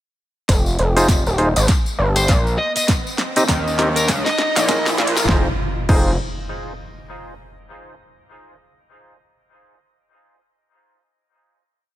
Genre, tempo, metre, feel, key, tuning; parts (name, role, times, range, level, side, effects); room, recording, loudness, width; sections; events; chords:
glitch hop; 100 BPM; 4/4; swing 59% on 16ths; F minor; A4 = 440 Hz
gritty driven synth bass; bass; 0.5-6.2 s; Eb1 to Eb2; -19 LUFS; equal; distortion
electronic kick drum; drums; 0.5-6.0 s; -18 LUFS; equal
pop drum kit; drums; 0.5-6.0 s; crash cymbal, hi-hat, rim click, snare drum; -24 LUFS; equal; high-pass filter on snare, high-pass filter on hats, high-pass filter on cymbals
tambourine; percussion; 0.5-5.3 s; -27 LUFS; left 3 dB
riser and impact; sound effects; 2.6-7.7 s; -26 LUFS; equal
mellow clav; stabs; 1.0-6.1 s; C4 to Eb5; -23 LUFS; equal; sidechain pumping, dub echo
fuzz lead guitar; melody; 2.2-4.9 s; Bb4 to Eb5; -24 LUFS; equal; distortion, vintage 12-bit sampler grit, dub echo
light reverb; high-pass filter; -15 LUFS; side -14 dB against mid
0.5-5.3 build; 5.3-7.7 final chord
build-up 0.5-5.3; drum fill 0.5-5.3; filter sweep 0.5-5.3; riser 2.6-5.3
0.5 Fm7; 1.7 Gm; 2.9 Cm; 4.1 Bbm; 5.3 Fm7